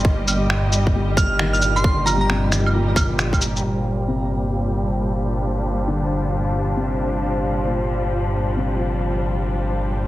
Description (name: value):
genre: future garage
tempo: 134 BPM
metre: 4/4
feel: swing 65% on 16ths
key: G minor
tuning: A4 = 442 Hz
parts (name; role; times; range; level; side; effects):
- felt-muted upright piano; accompaniment; 0.0-10.1 s; Bb2 to A3; -27 LUFS; left 2 dB; vintage 12-bit sampler grit, sidechain pumping, low-pass filter, tape echo
- muted studio string section; sustained chords; 0.0-10.1 s; Bb2 to Eb5; -24 LUFS; equal; sidechain pumping, low-pass filter
- dark detuned saw bass; bass; 0.0-10.1 s; G1; -23 LUFS; equal; sidechain pumping
- electronic kick drum; drums; 0.0-3.4 s; none; -20 LUFS; equal; overdrive, studio reverb
- electronic cabasa, shaker, claves and finger snaps; drums; 0.3-3.6 s; none; -23 LUFS; right 1 dB; low-pass filter on snare, studio reverb, low-pass filter on perc
- glassy synth bell; melody; 1.2-2.3 s; Bb5 to F6; -26 LUFS; right 3 dB; chorus, tape echo
room: light reverb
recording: heavily compressed radio sound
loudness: -18 LUFS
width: side -16 dB against mid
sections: 0.0-3.6 A section; 3.6-10.1 B section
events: filter sweep on string section 3.6-10.1; filter sweep on felt piano 3.6-10.1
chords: 0.0 Eb/G; 3.6 Gm7